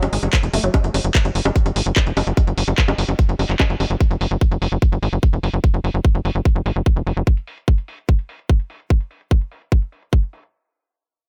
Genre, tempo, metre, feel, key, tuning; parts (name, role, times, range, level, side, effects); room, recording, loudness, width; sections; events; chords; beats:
psychedelic trance; 147 BPM; 4/4; straight; A4 = 440 Hz
tight sequencer bass; bass; 0.0-7.2 s; E1 to G#1; -22 LUFS; equal
drum and bass drum kit; drums; 0.0-10.5 s; bongos, handclaps, hi-hat; -26 LUFS; equal; low-pass filter on hats, low-pass filter on cymbals, low-pass filter on perc, low-pass filter on snare, low-pass filter on room
unison pluck; riff; 0.1-0.7 s; F#3 to A3; -30 LUFS; equal; sidechain pumping, diffuse ambient delay
electronic kick drum; drums; 0.3-10.2 s; -18 LUFS; equal
digital ambience; -19 LUFS; mono
0.0-10.5 A section
0.33 | 0.74 1.15 1.56 1.96 | 2.37 2.78 3.19 3.60 | 4.00 4.41 4.82 5.23 | 5.64 6.05 6.45 6.86 | 7.27 7.68 8.09 8.49 | 8.90 9.31 9.72 10.13